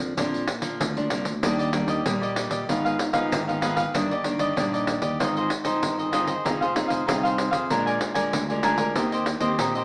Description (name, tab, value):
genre	samba and choro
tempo	96 BPM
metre	4/4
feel	straight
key	Eb major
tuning	A4 = 440 Hz
part	nylon-string guitar	accompaniment	0.0-9.8 s	F2 to Ab4	-30 LUFS	equal	none
part	modern bright fingered electric bass	bass	0.0-9.8 s	F1 to F2	-34 LUFS	equal	none
part	pandeiro	percussion	0.2-9.8 s	none	-31 LUFS	equal	none
part	cavaquinho	accompaniment	1.4-9.8 s	D4 to Ab5	-28 LUFS	equal	none
room	wet studio reverb, RT60 0.8 s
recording	heard from further back in the room, small speaker sound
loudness	-25 LUFS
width	mono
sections	0.0-9.8 A section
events	none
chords	0.0 Bb; 1.4 Ebmaj7; 2.7 Abm6; 3.9 Ebmaj7/G; 5.2 Ab6; 6.5 Fm7; 7.7 Bb7; 9.0 Eb6